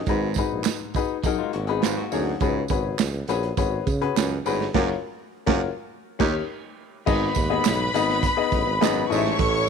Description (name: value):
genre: uptempo 1960s-style soul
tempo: 103 BPM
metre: 4/4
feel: straight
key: G# dorian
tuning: A4 = 440 Hz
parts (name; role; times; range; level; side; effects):
- warm baby grand piano; accompaniment; 0.1-9.7 s; G#2 to E5; -26 LUFS; left 11 dB; none
- breathy baritone saxophone; riff; 0.1-9.7 s; D#2 to A2; -29 LUFS; right 12 dB; none
- warm tuba; bass; 0.1-9.7 s; F#1 to C#3; -28 LUFS; right 1 dB; none
- crunchy breakbeat drum kit; drums; 0.1-9.5 s; crash cymbal, hi-hat, kick drum, snare drum; -26 LUFS; right 5 dB; none
- tambourine and handclaps; percussion; 0.1-9.5 s; none; -35 LUFS; right 15 dB; none
- electric guitar through a small old amp; riff; 1.2-2.4 s; F#3 to G#4; -32 LUFS; left 11 dB; none
- warm studio string section; second line; 7.1-9.7 s; B4 to C#6; -25 LUFS; left 1 dB; none
room: studio reverb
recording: 1960s-style stereo with parts hard left and right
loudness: -21 LUFS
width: side -6 dB against mid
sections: 0.0-7.1 A section; 7.1-9.7 B section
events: band accent 4.7-7.1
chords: 0.1 G#m7; 2.4 C#7sus4; 4.7 F#maj7; 5.9 D#7; 7.1 G#m; 9.1 A